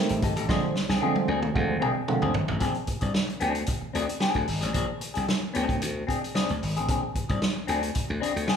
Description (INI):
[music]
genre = funk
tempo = 112 BPM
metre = 4/4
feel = straight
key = unclear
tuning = A4 = 440 Hz
[part]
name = mellow clav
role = stabs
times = 0.0-2.4 s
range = D3 to C4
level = -28 LUFS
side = right 3 dB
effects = phaser
[part]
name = semi-hollow electric guitar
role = accompaniment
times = 0.1-8.6 s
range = C4 to A4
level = -30 LUFS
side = left 4 dB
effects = phaser
[part]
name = slap bass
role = bass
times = 0.1-8.5 s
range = Ab1 to D2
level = -31 LUFS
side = equal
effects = none
[part]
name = vintage drum kit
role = drums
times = 0.1-8.6 s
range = hi-hat, kick drum, snare drum, toms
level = -28 LUFS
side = right 1 dB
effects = none
[sound]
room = moderate large studio reverb, RT60 1.2 s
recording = band playing live in one room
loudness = -24 LUFS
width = side -7 dB against mid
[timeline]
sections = 0.0-2.6 A section; 2.6-8.6 B section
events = drum fill 0.5-2.6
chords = 0.5 Bb9 (rootless)